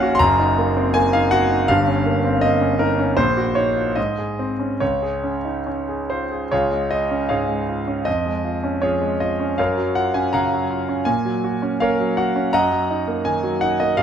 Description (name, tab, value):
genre	classical, romantic character piece for solo piano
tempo	69-84 BPM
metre	2/4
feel	rubato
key	Db major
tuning	A4 = 440 Hz
part	bright concert grand piano	solo	0.0-14.0 s	Gb1 to C6	-18 LUFS	equal	none
room	moderate large studio reverb, RT60 1.1 s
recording	none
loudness	-18 LUFS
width	side -8 dB against mid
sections	0.0-6.5 A section; 6.5-14.0 B section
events	none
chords	0.2 Ebm/Gb; 1.7 Eb7/G; 3.2 Ebm7/Bb; 4.0 Ab; 4.8 Db; 8.1 Db/F; 9.6 Gbmaj7; 11.1 Gb/Bb; 12.5 Ebm/Gb